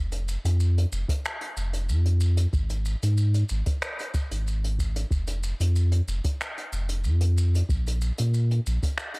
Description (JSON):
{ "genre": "sunset chillout", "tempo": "93 BPM", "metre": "4/4", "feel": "straight", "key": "F minor", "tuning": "A4 = 441 Hz", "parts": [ { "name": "warm sub bass", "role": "bass", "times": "0.0-8.8 s", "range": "F1 to Bb2", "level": "-23 LUFS", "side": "equal", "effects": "tube saturation" }, { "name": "vintage brush drum kit", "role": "drums", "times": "0.1-9.2 s", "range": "finger snaps, hi-hat, shaker", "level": "-35 LUFS", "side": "equal", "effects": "tape echo" }, { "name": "electronic kick drum", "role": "drums", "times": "1.1-8.9 s", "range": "none", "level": "-26 LUFS", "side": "equal", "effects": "none" } ], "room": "little or no reverb", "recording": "echo-heavy mix", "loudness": "-23 LUFS", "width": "side -32 dB against mid", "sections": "0.0-9.2 A section", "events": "none", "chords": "none" }